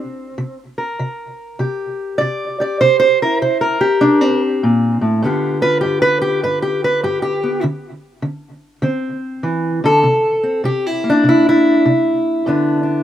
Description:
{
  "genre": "acoustic country blues, solo or duo",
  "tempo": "100 BPM",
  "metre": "4/4",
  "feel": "swing 64% on 8ths",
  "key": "unclear",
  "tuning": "A4 = 440 Hz",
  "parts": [
    { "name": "fingerpicked steel-string acoustic guitar", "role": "solo", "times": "0.0-13.0 s", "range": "G2 to D5", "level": "-14 LUFS", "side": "equal", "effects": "slapback echo" }
  ],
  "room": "little or no reverb",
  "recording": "recorded outdoors, with no room sound",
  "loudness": "-14 LUFS",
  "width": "side -11 dB against mid",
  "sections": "0.0-13.0 A section",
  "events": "none",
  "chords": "0.0 C7(no3); 5.2 G7; 7.6 Amadd11/D (rootless); 10.0 C7; 12.4 G"
}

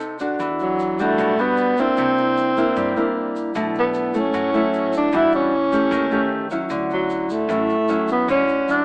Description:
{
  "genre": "bossa nova",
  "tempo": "152 BPM",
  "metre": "4/4",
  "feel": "straight",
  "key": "D major",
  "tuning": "A4 = 440 Hz",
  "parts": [
    { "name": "breathy tenor saxophone", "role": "melody", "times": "0.0-8.8 s", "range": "F#3 to E4", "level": "-19 LUFS", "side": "equal", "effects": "none" },
    { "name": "nylon-string guitar", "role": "accompaniment", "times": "0.0-8.8 s", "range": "A2 to A4", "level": "-21 LUFS", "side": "equal", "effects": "none" },
    { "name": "tube shaker", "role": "percussion", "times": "0.0-8.8 s", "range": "none", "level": "-47 LUFS", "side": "right 1 dB", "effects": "none" },
    { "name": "upright bass", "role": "bass", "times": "0.4-8.8 s", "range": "A1 to G2", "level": "-35 LUFS", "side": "equal", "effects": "none" }
  ],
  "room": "light reverb",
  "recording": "AM radio sound",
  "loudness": "-17 LUFS",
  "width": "side -30 dB against mid",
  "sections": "0.0-8.8 A section",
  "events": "none",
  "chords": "0.4 Em9; 2.0 C9; 3.5 Bm11; 5.1 Em9; 5.9 Eb7#11; 6.7 Dmaj9"
}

